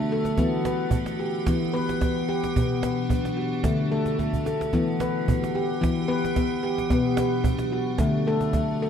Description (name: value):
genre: world meditative, meditative tuned percussion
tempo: 110 BPM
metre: 4/4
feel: swing 54% on 16ths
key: E minor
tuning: A4 = 443 Hz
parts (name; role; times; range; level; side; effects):
- icy glass pad; sustained chords; 0.0-8.9 s; E3 to G4; -29 LUFS; right 4 dB; chorus, built-in reverb
- handpan; arpeggios; 0.0-8.9 s; B2 to B4; -24 LUFS; left 3 dB; diffuse ambient delay
- cajon; percussion; 0.2-8.8 s; none; -28 LUFS; right 2 dB; none
room: wet echo chamber reverb, RT60 1.3 s, small room ambience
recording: dark, warm production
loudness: -22 LUFS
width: side -8 dB against mid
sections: 0.0-8.9 A section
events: drum fill 4.2-4.7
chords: 0.4 Em; 2.6 Bm; 3.6 D; 4.7 Em; 6.9 Bm; 8.0 D